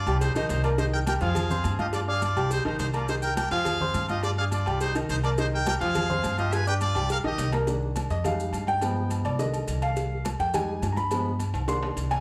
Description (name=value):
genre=latin, salsa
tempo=209 BPM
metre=4/4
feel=straight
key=C minor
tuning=A4 = 440 Hz
part: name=bright trumpet section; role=melody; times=0.0-7.5 s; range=Eb4 to Ab5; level=-32 LUFS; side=equal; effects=none
part: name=clear concert grand piano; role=accompaniment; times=0.0-12.2 s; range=D3 to F6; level=-32 LUFS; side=equal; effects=none
part: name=upright bass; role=bass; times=0.1-12.2 s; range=Bb1 to G2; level=-31 LUFS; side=equal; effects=none
part: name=agogo bells and timbales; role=percussion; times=0.1-12.2 s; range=none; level=-39 LUFS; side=equal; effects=none
part: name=congas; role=percussion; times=0.1-12.2 s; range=none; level=-39 LUFS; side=equal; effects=none
part: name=maracas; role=percussion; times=0.1-12.2 s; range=none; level=-47 LUFS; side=equal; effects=none
part: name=cowbell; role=percussion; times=0.2-12.2 s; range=none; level=-39 LUFS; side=equal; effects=none
room=moderate large studio reverb, RT60 1.1 s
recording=band playing live in one room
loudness=-26 LUFS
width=mono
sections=0.0-7.7 A section; 7.7-12.2 B section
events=drum fill 7.0-7.7, 11.5-12.2; grand piano solo 7.7-12.2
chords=0.2 Cm7; 1.4 Fm; 1.9 G5; 2.5 Cm7; 3.7 Fm; 4.2 G5; 4.8 Cm7; 6.0 Fm; 6.5 G7; 7.1 Cm7; 8.2 Fm7; 8.8 G7b9; 9.4 Cm7; 10.5 Fm7; 11.1 G7b9; 11.7 Cm7